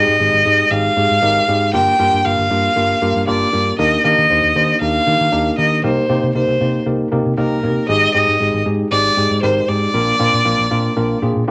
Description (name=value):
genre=dance-pop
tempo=117 BPM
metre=4/4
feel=straight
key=unclear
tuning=A4 = 438 Hz
part: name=rich violin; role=melody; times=0.0-11.2 s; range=Bb4 to G5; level=-18 LUFS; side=equal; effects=none
part: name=tine electric piano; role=accompaniment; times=0.0-11.5 s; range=Ab3 to C5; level=-21 LUFS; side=equal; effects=none
part: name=vintage muted fingered electric bass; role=bass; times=0.0-11.5 s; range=G1 to Eb3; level=-24 LUFS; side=equal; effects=none
room=moderate studio reverb, RT60 0.5 s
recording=none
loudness=-16 LUFS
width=mono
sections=0.0-11.5 A section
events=none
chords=0.0 Abmaj7; 1.7 Gm7; 3.8 Ebmaj7; 5.8 Cm7; 7.9 Abmaj7; 9.9 Bbadd9